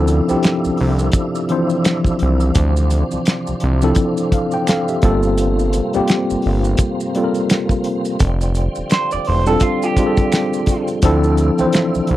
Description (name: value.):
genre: R&B, neo-soul.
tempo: 85 BPM.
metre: 4/4.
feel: swing 57% on 16ths.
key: D minor.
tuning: A4 = 439 Hz.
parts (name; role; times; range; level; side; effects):
tine electric piano; accompaniment; 0.0-12.2 s; E3 to G5; -17 LUFS; left 1 dB; overdrive, fast stereo tremolo.
tonewheel organ; sustained chords; 0.0-12.2 s; C3 to E4; -26 LUFS; right 1 dB; slow rotary speaker, overdrive, chorus vibrato.
fat analog bass; bass; 0.0-12.2 s; E1 to D2; -17 LUFS; equal; tube saturation.
cloth-damped thuddy drum kit; drums; 0.1-12.2 s; hi-hat, kick drum, snare drum; -16 LUFS; equal; none.
maracas and finger snaps; percussion; 0.1-12.1 s; none; -32 LUFS; right 5 dB; none.
electric guitar through a small old amp; second line; 8.9-10.8 s; F4 to D5; -21 LUFS; right 4 dB; none.
room: little or no reverb.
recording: dry, close 1970s-style studio recording.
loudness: -14 LUFS.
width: side -14 dB against mid.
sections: 0.0-12.2 A section.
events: none.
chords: 0.0 Dm9; 5.0 Gm11; 8.2 F69; 11.0 Dm9.